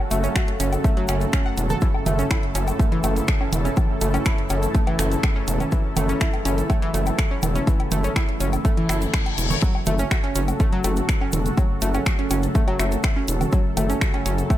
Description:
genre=melodic techno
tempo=123 BPM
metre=4/4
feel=straight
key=unclear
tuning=A4 = 439 Hz
part: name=lush unison pad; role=sustained chords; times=0.0-14.6 s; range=C#3 to A4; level=-29 LUFS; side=equal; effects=chorus, sidechain pumping
part: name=analog drone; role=drone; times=0.0-14.6 s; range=F#2 to C#3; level=-34 LUFS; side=left 1 dB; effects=none
part: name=analog pluck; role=arpeggios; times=0.1-14.6 s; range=E3 to F#5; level=-27 LUFS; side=right 1 dB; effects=chorus, cassette tape, sidechain pumping, tape echo
part: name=gritty driven synth bass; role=bass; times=0.1-14.4 s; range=E1 to F#1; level=-23 LUFS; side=equal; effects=sidechain pumping
part: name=house drum kit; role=drums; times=0.1-14.6 s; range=congas, finger snaps, hi-hat, woodblock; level=-28 LUFS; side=right 1 dB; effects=overdrive, sidechain pumping on hats, sidechain pumping on perc
part: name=tube shaker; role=percussion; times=0.1-14.6 s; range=none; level=-37 LUFS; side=left 4 dB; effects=none
part: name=electronic kick drum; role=drums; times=0.4-14.6 s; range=none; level=-21 LUFS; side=equal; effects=overdrive
part: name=reverse cymbal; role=sound effects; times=8.9-9.6 s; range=none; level=-30 LUFS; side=left 6 dB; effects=none
room=little or no reverb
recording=none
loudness=-19 LUFS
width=side -13 dB against mid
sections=0.0-14.6 A section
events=reverse cymbal 8.9-9.6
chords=0.0 A

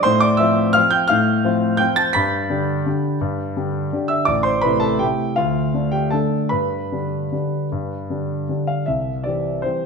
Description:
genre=classical, piano waltz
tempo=145-178 BPM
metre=3/4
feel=rubato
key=unclear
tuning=A4 = 438 Hz
part: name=warm grand piano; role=solo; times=0.0-9.9 s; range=A1 to B6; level=-17 LUFS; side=equal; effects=none
room=wet recital hall reverb, RT60 1.5 s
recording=minimal, uncompressed stereo recording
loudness=-17 LUFS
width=side -5 dB against mid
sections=0.0-8.9 A section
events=none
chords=0.0 F/A; 2.2 G; 4.3 Am; 5.4 Dm; 6.5 G; 8.9 C

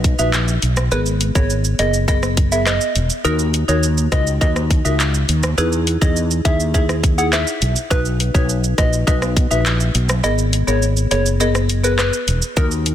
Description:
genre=dancehall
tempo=103 BPM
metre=4/4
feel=straight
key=unclear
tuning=A4 = 440 Hz
part: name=fretless electric bass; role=bass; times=0.0-12.9 s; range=Fb1 to E2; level=-18 LUFS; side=equal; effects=ensemble chorus
part: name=island pop drum kit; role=drums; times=0.0-12.9 s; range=handclaps, hi-hat, kick drum, rim click, shaker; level=-19 LUFS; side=equal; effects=none
part: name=soft struck synth lead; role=melody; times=0.2-12.7 s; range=Bb4 to Gb5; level=-23 LUFS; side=equal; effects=chorus, tape echo
part: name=buzzing marimba with medium hard mallets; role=accompaniment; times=0.2-12.9 s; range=Cb4 to B4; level=-23 LUFS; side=left 2 dB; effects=sidechain pumping
room=little or no reverb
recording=dense, heavily limited modern master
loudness=-15 LUFS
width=side -10 dB against mid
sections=0.0-12.6 A section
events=kick muted 3.2-3.8, 10.2-12.6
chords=0.0 B; 0.9 Abmadd9; 3.2 Ebm; 5.6 Emaj7; 7.9 B; 10.2 Abmadd9

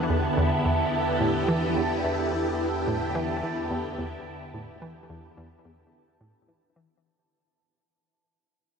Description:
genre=ambient, sequencer-driven space music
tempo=108 BPM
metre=4/4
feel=straight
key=E minor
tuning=A4 = 440 Hz
part: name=phased string machine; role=sustained chords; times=0.0-7.3 s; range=D3 to G4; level=-27 LUFS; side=equal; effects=ensemble chorus, phaser
part: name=round analog bass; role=bass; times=0.0-7.3 s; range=E2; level=-38 LUFS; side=equal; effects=none
part: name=bubbling stepped-filter texture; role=texture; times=0.0-7.3 s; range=A5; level=-35 LUFS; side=right 5 dB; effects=chorus, built-in reverb
part: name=analog pluck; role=riff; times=0.1-6.9 s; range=E2 to E3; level=-29 LUFS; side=equal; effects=chorus, ping-pong delay
room=wet huge ambient reverb, RT60 8.0 s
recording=none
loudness=-24 LUFS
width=side -6 dB against mid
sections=0.0-7.3 A section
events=fade-out on analog synth bass 0.0-7.3; fade-out 0.0-7.3; filter sweep on synth arpeggio sound 0.0-7.3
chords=0.0 Em7

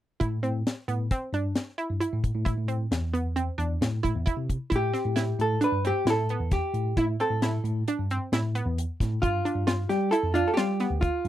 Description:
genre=progressive instrumental, band music in an uneven meter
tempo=133 BPM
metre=5/4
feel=straight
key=A minor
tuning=A4 = 440 Hz
part: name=analog pluck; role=arpeggios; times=0.2-11.2 s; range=B3 to F4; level=-31 LUFS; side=right 3 dB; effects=chorus
part: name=bell-like tine electric piano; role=bass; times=0.2-11.3 s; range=D2 to G3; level=-28 LUFS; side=equal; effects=medium stereo tremolo
part: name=deep reggae drum kit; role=drums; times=0.2-11.3 s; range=hi-hat, kick drum, snare drum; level=-28 LUFS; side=left 1 dB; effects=none
part: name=hollow-body jazz guitar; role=melody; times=4.8-11.3 s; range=E4 to B4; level=-27 LUFS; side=equal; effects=none
room=little or no reverb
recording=dry, close 1970s-style studio recording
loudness=-25 LUFS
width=side -12 dB against mid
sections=0.2-4.7 A section; 4.7-11.3 B section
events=none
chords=0.2 Amadd9; 4.7 Am9; 9.2 G7

